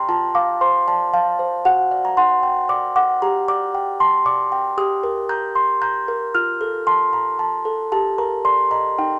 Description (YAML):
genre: classical, lullaby for music box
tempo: 115 BPM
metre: 3/4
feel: rubato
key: G minor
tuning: A4 = 440 Hz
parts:
  - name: music box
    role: solo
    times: 0.0-9.2 s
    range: Eb4 to G6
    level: -19 LUFS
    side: equal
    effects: none
room: wet studio reverb, RT60 0.5 s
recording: none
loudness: -19 LUFS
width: mono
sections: 0.0-9.2 A section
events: none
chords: 0.1 F; 1.7 D/F#; 3.2 G5; 4.8 Eb/G; 6.3 F; 7.9 Gm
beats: | 0.09 0.62 1.14 | 1.65 2.17 2.69 | 3.22 3.74 4.26 | 4.78 5.30 5.82 | 6.34 6.87 7.39 | 7.92 8.45 8.98